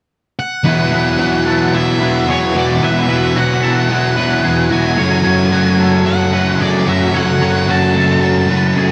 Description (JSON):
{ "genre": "rock", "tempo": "111 BPM", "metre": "4/4", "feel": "straight", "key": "unclear", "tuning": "A4 = 441 Hz", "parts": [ { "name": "octave-fuzz lead guitar", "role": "melody", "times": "0.4-8.9 s", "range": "C#5 to A5", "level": "-22 LUFS", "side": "equal", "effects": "distortion, analog delay" }, { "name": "twangy electric guitar", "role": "arpeggios", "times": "0.6-8.9 s", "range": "F#4 to C#5", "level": "-24 LUFS", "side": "equal", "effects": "ensemble chorus, analog delay" }, { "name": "distorted electric guitar", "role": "riff", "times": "0.6-8.9 s", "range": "E3 to F#4", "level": "-22 LUFS", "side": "equal", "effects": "distortion" }, { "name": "overdriven electric guitar", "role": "riff", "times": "0.6-8.9 s", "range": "E2 to F#4", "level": "-20 LUFS", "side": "equal", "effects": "reverse reverb" }, { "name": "thick fuzz guitar", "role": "riff", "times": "0.6-8.9 s", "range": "E2 to F#3", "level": "-18 LUFS", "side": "equal", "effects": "distortion, analog chorus" } ], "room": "moderate scoring stage reverb, RT60 1.5 s", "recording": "dark, warm production", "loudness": "-14 LUFS", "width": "mono", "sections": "0.7-8.9 A section", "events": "none", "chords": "0.0 N.C.; 0.7 Esus2; 5.0 F#m" }